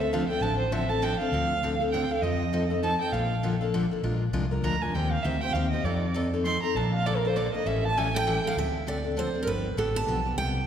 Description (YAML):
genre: acoustic string swing (jazz manouche)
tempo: 199 BPM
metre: 3/4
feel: swing 58% on 8ths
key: D minor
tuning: A4 = 440 Hz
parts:
  - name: warm violin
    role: second line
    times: 0.0-8.5 s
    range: Bb4 to C6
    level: -30 LUFS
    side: right 3 dB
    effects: none
  - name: picked steel-string acoustic guitar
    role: accompaniment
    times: 0.0-10.6 s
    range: C3 to C5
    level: -29 LUFS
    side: left 2 dB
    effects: none
  - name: fretless electric bass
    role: bass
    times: 0.0-10.7 s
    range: G1 to F2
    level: -29 LUFS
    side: left 1 dB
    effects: none
  - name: picked steel-string acoustic guitar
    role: melody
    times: 8.2-10.7 s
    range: A4 to A5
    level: -30 LUFS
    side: right 4 dB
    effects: none
room: wet concert hall reverb, RT60 2.3 s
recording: recorded in a church or concert hall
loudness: -24 LUFS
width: side -8 dB against mid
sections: 0.0-1.3 A section; 1.3-8.6 A section; 8.6-10.7 B section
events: violin solo 0.0-8.6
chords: 0.0 Dm7; 2.2 F7; 3.1 Bbmaj7; 4.0 Bb9; 4.9 Eb6; 5.9 F7; 6.8 Bbmaj7; 7.7 A7; 8.6 Dm7; 9.5 G7